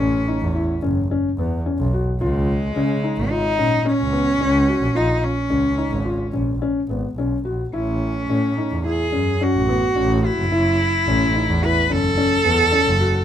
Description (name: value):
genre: contemporary instrumental, chamber music in an uneven meter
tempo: 108 BPM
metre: 5/4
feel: straight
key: unclear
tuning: A4 = 443 Hz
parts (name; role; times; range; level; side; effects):
- rich cello; melody; 0.0-13.2 s; G#3 to B4; -20 LUFS; right 1 dB; none
- felt-muted upright piano; arpeggios; 0.0-13.2 s; B3 to F#4; -23 LUFS; left 3 dB; none
- rich double bass; bass; 0.0-13.1 s; F#1 to C#3; -22 LUFS; right 1 dB; none
room: light reverb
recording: close, detailed microphones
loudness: -17 LUFS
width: side -10 dB against mid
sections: 0.0-13.2 A section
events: none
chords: 0.0 A; 2.2 C#; 7.7 A